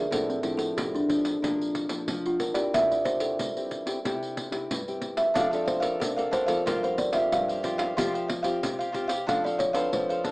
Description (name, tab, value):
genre	samba and choro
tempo	92 BPM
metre	4/4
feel	straight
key	F major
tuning	A4 = 440 Hz
part	kalimba	melody	0.0-10.3 s	C4 to F5	-27 LUFS	equal	none
part	nylon-string guitar	accompaniment	0.0-10.3 s	G2 to A4	-32 LUFS	left 1 dB	none
part	pandeiro	percussion	0.1-10.3 s	none	-34 LUFS	equal	none
part	cavaquinho	accompaniment	5.3-10.3 s	D4 to F5	-31 LUFS	equal	plate reverb
room	wet studio reverb, RT60 0.6 s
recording	rough home demo mix, small speaker sound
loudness	-25 LUFS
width	side -23 dB against mid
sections	0.0-10.3 A section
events	kalimba solo 0.0-10.3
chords	0.1 Dm7/A; 1.4 Bb; 2.7 C; 5.4 F6; 6.7 Csus4/G; 8.0 Fsus2; 9.3 Dm7/F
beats	| 0.12 0.77 1.43 2.08 | 2.74 3.40 4.05 4.70 | 5.36 6.01 6.67 7.32 | 7.97 8.62 9.28 9.93